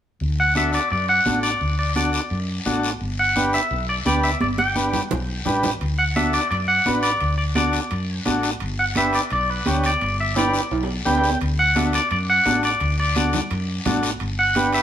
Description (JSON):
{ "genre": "latin, cumbia", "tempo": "171 BPM", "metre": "4/4", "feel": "straight", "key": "D major", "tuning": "A4 = 439 Hz", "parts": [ { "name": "woody fretless electric bass", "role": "bass", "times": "0.2-14.8 s", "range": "G1 to F#2", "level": "-25 LUFS", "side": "equal", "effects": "none" }, { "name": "congas", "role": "percussion", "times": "0.2-14.7 s", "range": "none", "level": "-27 LUFS", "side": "right 3 dB", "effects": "none" }, { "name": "guiro", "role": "percussion", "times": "0.2-14.8 s", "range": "none", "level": "-31 LUFS", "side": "left 4 dB", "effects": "none" }, { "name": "twangy electric guitar", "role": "melody", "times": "0.4-14.8 s", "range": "B4 to G5", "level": "-21 LUFS", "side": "equal", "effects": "spring reverb" }, { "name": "combo organ", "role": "accompaniment", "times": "0.6-14.8 s", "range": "D4 to G5", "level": "-23 LUFS", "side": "equal", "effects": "none" }, { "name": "timbales", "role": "percussion", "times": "5.8-14.8 s", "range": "none", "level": "-31 LUFS", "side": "right 4 dB", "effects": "none" } ], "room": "moderate studio reverb, RT60 0.8 s", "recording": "band playing live in one room", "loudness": "-18 LUFS", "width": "side -10 dB against mid", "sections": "0.2-11.4 A section; 11.4-14.8 A section", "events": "drum fill 4.4-5.8, 10.4-11.4; transistor combo organ fill 10.9-11.4", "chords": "0.2 D; 3.0 G; 5.8 D; 8.6 G; 11.4 D; 14.2 G", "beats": "| 0.20 0.56 0.91 1.26 | 1.61 1.96 2.31 2.66 | 3.01 3.36 3.71 4.06 | 4.41 4.76 5.11 5.46 | 5.81 6.16 6.51 6.86 | 7.21 7.56 7.91 8.26 | 8.61 8.96 9.31 9.66 | 10.01 10.36 10.71 11.06 | 11.41 11.76 12.11 12.46 | 12.81 13.16 13.51 13.86 | 14.21 14.56" }